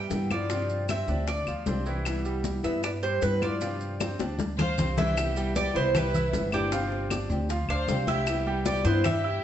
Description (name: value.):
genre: latin, Cuban son and guajira.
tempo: 154 BPM.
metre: 4/4.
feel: straight.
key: C major.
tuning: A4 = 441 Hz.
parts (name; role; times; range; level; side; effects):
Cuban tres; melody; 0.0-9.4 s; G4 to G5; -30 LUFS; right 1 dB; none.
bright grand piano; arpeggios; 0.0-9.4 s; E3 to E6; -35 LUFS; right 3 dB; none.
upright bass; bass; 0.0-9.4 s; G1 to G2; -31 LUFS; equal; none.
nylon-string guitar; accompaniment; 0.1-9.1 s; C3 to G4; -34 LUFS; left 2 dB; none.
bongos; percussion; 0.1-9.2 s; none; -36 LUFS; left 4 dB; none.
congas; percussion; 0.1-9.4 s; none; -33 LUFS; left 2 dB; none.
maracas; percussion; 0.1-9.2 s; none; -44 LUFS; right 3 dB; none.
claves; percussion; 0.3-9.2 s; none; -39 LUFS; left 4 dB; none.
dark studio violin section; second line; 4.6-9.4 s; C4 to C5; -36 LUFS; left 1 dB; none.
room: wet stone room reverb, RT60 1.2 s.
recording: band playing live in one room, nothing above 8.0 kHz.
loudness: -25 LUFS.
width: side -10 dB against mid.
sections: 0.0-5.2 A section; 5.2-9.4 B section.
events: drum fill 4.0-5.2.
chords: 0.0 Cmaj7; 0.5 G7sus4; 2.1 Cmaj7; 3.6 G7sus4; 5.2 Cmaj7; 6.7 G7sus4; 8.3 Cmaj7.